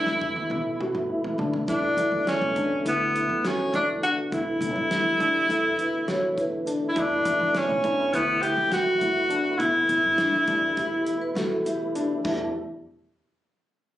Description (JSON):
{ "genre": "progressive instrumental, band music in an uneven meter", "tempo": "204 BPM (eighths)", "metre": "9/8", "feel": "straight", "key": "E dorian", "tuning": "A4 = 440 Hz", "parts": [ { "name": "warm tenor saxophone", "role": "melody", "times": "0.0-11.6 s", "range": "B3 to G4", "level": "-23 LUFS", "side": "equal", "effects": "none" }, { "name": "tonewheel organ", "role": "accompaniment", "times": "0.0-12.5 s", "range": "B2 to E4", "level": "-33 LUFS", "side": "equal", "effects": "overdrive, fast rotary speaker" }, { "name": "dark concert grand piano", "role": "arpeggios", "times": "0.0-12.5 s", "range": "D4 to F#4", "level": "-29 LUFS", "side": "left 1 dB", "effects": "none" }, { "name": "upright bass", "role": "bass", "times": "0.1-12.5 s", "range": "B1 to E3", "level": "-35 LUFS", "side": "equal", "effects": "none" }, { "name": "warm soul drum kit", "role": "drums", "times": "0.1-12.4 s", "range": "crash cymbal, hi-hat, kick drum, snare drum, toms", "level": "-36 LUFS", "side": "equal", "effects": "none" }, { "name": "vibraphone with soft mallets", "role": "second line", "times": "4.9-12.5 s", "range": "D4 to C#5", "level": "-31 LUFS", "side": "equal", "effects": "none" } ], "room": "light reverb", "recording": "recorded on a phone in the room, club reverb, compression, nothing above 10.9 kHz", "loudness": "-22 LUFS", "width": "side -13 dB against mid", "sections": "0.0-1.7 A section; 1.7-12.2 B section; 12.2-14.0 C section", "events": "drum fill 0.0-1.7", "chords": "0.0 E7(no3); 1.7 Em7; 12.2 E7(no3)", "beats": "0.21 0.51 0.80 1.09 1.39 | 1.68 1.98 2.27 2.56 2.86 3.15 3.44 3.74 4.03 | 4.32 4.62 4.91 5.20 5.49 5.79 6.08 6.37 6.67 | 6.96 7.25 7.54 7.84 8.13 8.43 8.72 9.01 9.30 | 9.60 9.89 10.19 10.48 10.77 11.07 11.36 11.65 11.95 | 12.24" }